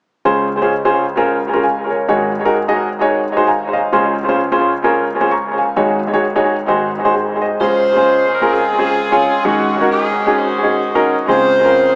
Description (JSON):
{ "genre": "gospel", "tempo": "130 BPM", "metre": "4/4", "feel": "swing 59% on 8ths", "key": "Db major", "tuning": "A4 = 440 Hz", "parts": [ { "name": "warm concert grand piano", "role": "accompaniment", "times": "0.3-12.0 s", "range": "Ab1 to Db6", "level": "-16 LUFS", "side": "equal", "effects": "tape echo" }, { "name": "clear saxophone section", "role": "melody", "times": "7.6-12.0 s", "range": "C4 to C5", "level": "-17 LUFS", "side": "equal", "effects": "tape echo" } ], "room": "wet spring reverb, RT60 1.6 s", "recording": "echo-heavy mix, small speaker sound", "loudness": "-15 LUFS", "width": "mono", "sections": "0.3-7.6 A section; 7.6-12.0 B section", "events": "grand piano fill 3.2-3.9", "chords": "0.3 Dbmaj7; 2.1 Ab7sus4; 3.9 Dbmaj7; 5.8 Ab7sus4; 6.7 Ab7; 7.6 Dbmaj7; 9.4 Ab7sus4; 11.3 Dbmaj7", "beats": "| 0.25 0.71 1.17 1.63 | 2.09 2.55 3.01 3.47 | 3.93 4.38 4.84 5.30 | 5.76 6.22 6.68 7.14 | 7.60 8.06 8.52 8.98 | 9.44 9.90 10.36 10.82 | 11.28 11.74" }